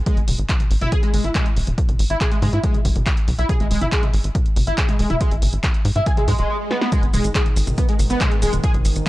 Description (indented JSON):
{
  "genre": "driving peak-time techno",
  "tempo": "140 BPM",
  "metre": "4/4",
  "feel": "straight",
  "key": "G# minor",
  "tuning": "A4 = 439 Hz",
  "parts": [
    { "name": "tight sequencer bass", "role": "bass", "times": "0.0-9.0 s", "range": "D#1 to G#2", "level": "-20 LUFS", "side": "equal", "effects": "sidechain pumping" },
    { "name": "overdriven synth lead", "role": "riff", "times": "0.1-9.1 s", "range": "G#3 to G#4", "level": "-24 LUFS", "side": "equal", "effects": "distortion, tube saturation, ensemble chorus, sidechain pumping, tape echo" },
    { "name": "electronic kick drum", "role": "drums", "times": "0.1-9.1 s", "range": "none", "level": "-20 LUFS", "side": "equal", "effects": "none" },
    { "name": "punchy analog drum machine", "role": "drums", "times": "0.1-9.1 s", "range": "handclaps, hi-hat, shaker, snare drum, toms", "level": "-26 LUFS", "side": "equal", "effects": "none" },
    { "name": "swell", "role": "sound effects", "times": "6.2-6.9 s", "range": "none", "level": "-32 LUFS", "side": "right 2 dB", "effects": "none" },
    { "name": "analog drone", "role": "drone", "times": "7.2-9.1 s", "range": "G#2 to D#3", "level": "-30 LUFS", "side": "equal", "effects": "chorus, sidechain pumping" }
  ],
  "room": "digital ambience",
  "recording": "dry, gritty hardware recording",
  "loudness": "-17 LUFS",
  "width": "side -17 dB against mid",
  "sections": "0.0-6.9 A section; 6.9-9.1 B section",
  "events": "swell 6.2-6.9; break 6.5-6.9; drum fill 6.7; drop 6.9-9.1",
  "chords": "0.0 N.C.; 6.9 G#5",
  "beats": "| 0.07 0.49 0.92 1.35 | 1.78 2.21 2.64 3.06 | 3.49 3.92 4.35 4.78 | 5.21 5.64 6.07 6.49 | 6.92 7.35 7.78 8.21 | 8.64 9.06"
}